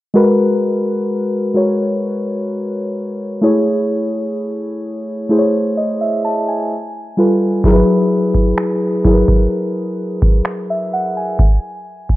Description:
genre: contemporary R&B.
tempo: 64 BPM.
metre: 4/4.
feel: straight.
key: G# minor.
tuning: A4 = 439 Hz.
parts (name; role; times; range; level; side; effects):
muted felt-like synth keys; accompaniment; 0.1-12.2 s; F#3 to A5; -15 LUFS; equal; chorus.
booming analog drum machine; drums; 7.6-12.2 s; finger snaps, kick drum; -13 LUFS; equal; none.
room: light reverb, digital ambience.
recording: low-pass filter.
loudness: -14 LUFS.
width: side -16 dB against mid.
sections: 0.1-12.2 A section.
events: filter sweep 0.1-12.2.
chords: 0.1 G#m9; 3.4 Amaj7; 6.7 G9; 7.6 F#9sus4; 11.4 N.C..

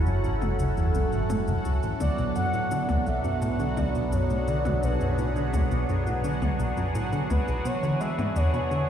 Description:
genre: ambient, sequencer-driven space music.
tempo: 85 BPM.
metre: 4/4.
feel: straight.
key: B dorian.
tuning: A4 = 438 Hz.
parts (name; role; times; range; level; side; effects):
phased analog pad; sustained chords; 0.0-8.9 s; E3 to A4; -30 LUFS; right 2 dB; phaser, chorus.
analog drone; bass; 0.0-8.9 s; F#1 to E2; -30 LUFS; equal; chorus.
bubbling stepped-filter texture; texture; 0.0-8.9 s; F#4 to F#5; -36 LUFS; equal; chorus, built-in reverb.
plucky analog bass; riff; 0.1-8.8 s; F#1 to G#3; -28 LUFS; equal; wide subtle chorus, ping-pong delay.
electronic cabasa and toms; percussion; 0.1-8.9 s; none; -38 LUFS; left 5 dB; ping-pong delay.
expressive synth lead; melody; 2.0-8.9 s; B4 to F#5; -32 LUFS; left 1 dB; chorus, ping-pong delay.
room: moderate huge ambient reverb, RT60 7.6 s.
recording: played on a big sound system in a bare room, stone room reverb.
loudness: -24 LUFS.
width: side -9 dB against mid.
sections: 0.0-8.9 A section.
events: none.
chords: 0.0 F#m7; 2.0 Bm7; 7.7 E7.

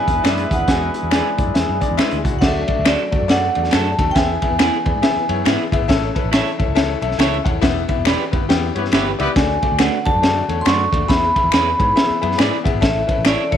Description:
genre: uptempo 1960s-style soul.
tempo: 138 BPM.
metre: 4/4.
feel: swing 61% on 8ths.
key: unclear.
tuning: A4 = 441 Hz.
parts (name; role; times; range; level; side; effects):
vibraphone with hard mallets; melody; 0.0-5.4, 9.4-13.6 s; C#5 to C#6; -20 LUFS; right 1 dB; none.
mellow horn section; second line; 0.0-2.2, 8.8-9.3 s; B3 to B4; -26 LUFS; equal; none.
mellow tonewheel organ; sustained chords; 0.0-13.6 s; D3 to A4; -29 LUFS; right 1 dB; slow rotary speaker, chorus vibrato.
warm concert grand piano; accompaniment; 0.1-13.6 s; G#3 to G#5; -23 LUFS; left 12 dB; none.
vintage muted fingered electric bass; bass; 0.1-13.6 s; D#1 to G#2; -24 LUFS; right 1 dB; none.
crunchy breakbeat drum kit; drums; 0.1-13.6 s; crash cymbal, hi-hat, kick drum, ride cymbal, snare drum; -19 LUFS; right 1 dB; none.
clean electric guitar; stabs; 0.2-13.4 s; A3 to C#5; -26 LUFS; right 13 dB; none.
finger snaps; percussion; 0.2-13.4 s; none; -27 LUFS; left 12 dB; none.
room: light reverb, small room ambience.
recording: 1960s-style stereo with parts hard left and right.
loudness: -15 LUFS.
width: side -9 dB against mid.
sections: 0.0-2.4 A section; 2.4-13.6 B section.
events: band accent 7.6-9.4; grand piano fill 12.2-12.8.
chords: 0.0 E7; 2.4 D; 4.2 E; 5.9 A; 7.6 Em; 9.4 D; 11.1 E; 12.8 A.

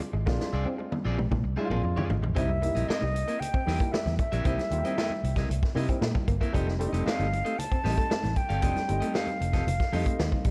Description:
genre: funk.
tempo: 115 BPM.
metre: 4/4.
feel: straight.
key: unclear.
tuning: A4 = 440 Hz.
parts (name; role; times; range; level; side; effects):
electric guitar at the edge of break-up; accompaniment; 0.0-10.4 s; C4 to F5; -40 LUFS; equal; none.
electric guitar through a small old amp; riff; 0.0-10.5 s; F3 to C4; -41 LUFS; equal; none.
vintage drum kit; drums; 0.0-10.5 s; hi-hat, kick drum, snare drum, toms; -32 LUFS; equal; none.
congas; percussion; 0.0-10.5 s; none; -41 LUFS; equal; none.
vintage muted fingered electric bass; bass; 0.1-10.5 s; F1 to C3; -32 LUFS; equal; none.
warm upright piano; stabs; 0.3-10.4 s; D#3 to G4; -38 LUFS; equal; none.
breathy concert flute; melody; 2.4-10.5 s; D#5 to A5; -34 LUFS; equal; none.
room: light reverb, small room reverb.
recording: dark, warm production.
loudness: -28 LUFS.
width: mono.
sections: 0.0-2.4 A section; 2.4-10.5 B section.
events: drum fill 0.3-2.4.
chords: 0.0 Bb9; 2.4 C7#9; 6.5 F9.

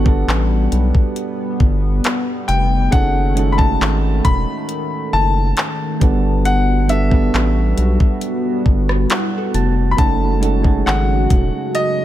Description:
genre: contemporary R&B.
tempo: 68 BPM.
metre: 4/4.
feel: straight.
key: unclear.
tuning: A4 = 440 Hz.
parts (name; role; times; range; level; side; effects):
clear concert grand piano; melody; 0.0-12.0 s; D#5 to B5; -22 LUFS; left 3 dB; digital delay.
soft electric-piano-like synth keys; accompaniment; 0.0-12.0 s; G3 to A5; -22 LUFS; right 5 dB; chorus.
chorused pulse-width pad; sustained chords; 0.0-12.0 s; C#3 to F#4; -23 LUFS; left 1 dB; sidechain pumping.
round analog bass; bass; 0.0-11.5 s; E1 to B1; -17 LUFS; equal; none.
smooth R&B drum kit; drums; 0.1-12.0 s; handclaps, hi-hat, kick drum, rim click; -17 LUFS; equal; none.
glassy wavetable pluck; texture; 9.1-10.6 s; E4 to A4; -30 LUFS; left 3 dB; chorus, digital delay.
room: little or no reverb.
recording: none.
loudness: -14 LUFS.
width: side -13 dB against mid.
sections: 0.0-12.0 A section.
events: synth keys fill 8.7-10.0.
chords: 0.0 Gmaj9; 2.9 F#m69; 6.0 Gmaj9; 10.0 F#m69.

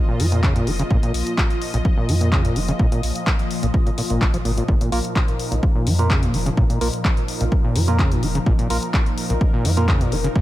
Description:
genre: acid house.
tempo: 127 BPM.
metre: 4/4.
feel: straight.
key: unclear.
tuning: A4 = 440 Hz.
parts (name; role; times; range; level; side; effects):
lush unison pad; sustained chords; 0.0-10.4 s; Bb2 to Eb5; -27 LUFS; left 1 dB; chorus, phaser, sidechain pumping.
overdriven acid bass; riff; 0.1-10.4 s; Ab2 to F3; -24 LUFS; equal; none.
warm sub bass; bass; 0.2-10.4 s; F1 to F2; -22 LUFS; equal; sidechain pumping.
punchy analog drum machine; drums; 0.2-10.3 s; handclaps, hi-hat; -27 LUFS; left 1 dB; none.
electronic kick drum; drums; 0.4-10.4 s; none; -19 LUFS; equal; none.
percussive organ stab; stabs; 4.9-9.9 s; Bb3 to Bb4; -29 LUFS; right 3 dB; chorus, dub echo.
room: little or no reverb.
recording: none.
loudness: -17 LUFS.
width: side -15 dB against mid.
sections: 0.0-10.4 A section.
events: filter sweep on acid bass 0.0-10.4.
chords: 0.0 Bb5.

